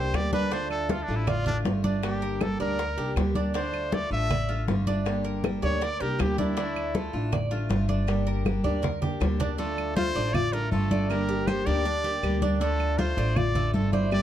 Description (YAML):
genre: latin, Cuban son and guajira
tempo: 159 BPM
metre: 4/4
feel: straight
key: D minor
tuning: A4 = 440 Hz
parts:
  - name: bright trumpet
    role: melody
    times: 0.0-7.3, 9.6-14.2 s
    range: D4 to E5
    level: -31 LUFS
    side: equal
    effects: none
  - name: picked steel-string acoustic guitar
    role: accompaniment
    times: 0.0-14.2 s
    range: D3 to G4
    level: -32 LUFS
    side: equal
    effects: none
  - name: Cuban tres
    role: arpeggios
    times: 0.0-14.2 s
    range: D4 to D5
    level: -33 LUFS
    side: right 3 dB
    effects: none
  - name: upright bass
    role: bass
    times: 0.0-14.2 s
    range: G1 to D2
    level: -29 LUFS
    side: equal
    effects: none
  - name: bongos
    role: percussion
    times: 0.1-9.6 s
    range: none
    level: -35 LUFS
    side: left 6 dB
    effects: none
  - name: claves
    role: percussion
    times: 0.1-14.2 s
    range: none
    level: -41 LUFS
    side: right 8 dB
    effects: none
  - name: congas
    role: percussion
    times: 0.1-14.2 s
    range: none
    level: -30 LUFS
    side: right 1 dB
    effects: none
  - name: nylon-string guitar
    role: second line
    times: 9.6-14.2 s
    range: D4 to G4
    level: -34 LUFS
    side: left 3 dB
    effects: none
room: moderate studio reverb, RT60 0.8 s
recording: dark, warm production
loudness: -24 LUFS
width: side -11 dB against mid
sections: 0.0-9.6 A section; 9.6-14.2 B section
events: trumpet solo 0.0-9.6; drum fill 8.5-9.6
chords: 0.0 Gm; 0.5 Dm; 2.0 Gm; 3.5 Dm; 5.1 Gm; 6.6 Dm; 8.1 Gm; 9.6 Dm; 11.1 Gm; 12.6 Dm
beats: 0.14 | 0.52 0.90 1.27 1.65 | 2.03 2.41 2.79 3.17 | 3.54 3.92 4.30 4.68 | 5.06 5.44 5.81 6.19 | 6.57 6.95 7.33 7.70 | 8.08 8.46 8.84 9.21 | 9.59 9.97 10.35 10.72 | 11.10 11.48 11.86 12.23 | 12.61 12.99 13.36 13.74 | 14.12